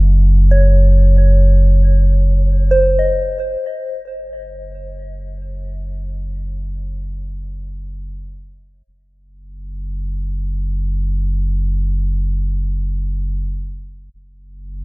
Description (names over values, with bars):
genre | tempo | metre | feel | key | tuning
ambient | free time | none | none | unclear | A4 = 440 Hz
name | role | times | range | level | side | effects
soft synth bell | arpeggios | 0.0-4.3 s | C5 to Eb5 | -20 LUFS | equal | chorus, phaser, tape echo
round analog bass | bass | 0.0-14.8 s | Gb1 | -16 LUFS | equal | tube saturation
room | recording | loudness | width
light reverb | none | -14 LUFS | side -23 dB against mid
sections
0.0-3.6 A section; 3.6-14.8 B section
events
fade-in on analog synth bass 3.6-14.8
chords
0.0 Dbmaj9/Gb; 3.6 Gb5; 8.9 N.C.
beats
free time